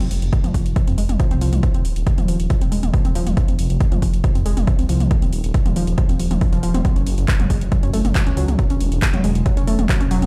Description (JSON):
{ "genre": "driving peak-time techno", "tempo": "138 BPM", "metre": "4/4", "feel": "straight", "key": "F phrygian", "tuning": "A4 = 440 Hz", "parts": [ { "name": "warbly dusty pluck", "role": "riff", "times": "0.0-10.2 s", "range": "F3 to Db4", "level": "-26 LUFS", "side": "equal", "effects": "chorus, tube saturation, sidechain pumping, tape echo" }, { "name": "dark detuned saw bass", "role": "bass", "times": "0.0-10.3 s", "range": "Eb1 to Gb2", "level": "-23 LUFS", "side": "equal", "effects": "sidechain pumping" }, { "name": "techno drum kit", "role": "drums", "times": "0.0-10.3 s", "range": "handclaps, hi-hat, toms", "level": "-30 LUFS", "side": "equal", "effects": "studio reverb" }, { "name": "electronic kick drum", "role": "drums", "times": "0.3-10.0 s", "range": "none", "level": "-20 LUFS", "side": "equal", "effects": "studio reverb" } ], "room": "digital ambience", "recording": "played on a big sound system in a bare room, large studio reverb", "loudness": "-18 LUFS", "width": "mono", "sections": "0.0-10.3 A section", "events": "none", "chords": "0.0 F5; 6.8 Gb5" }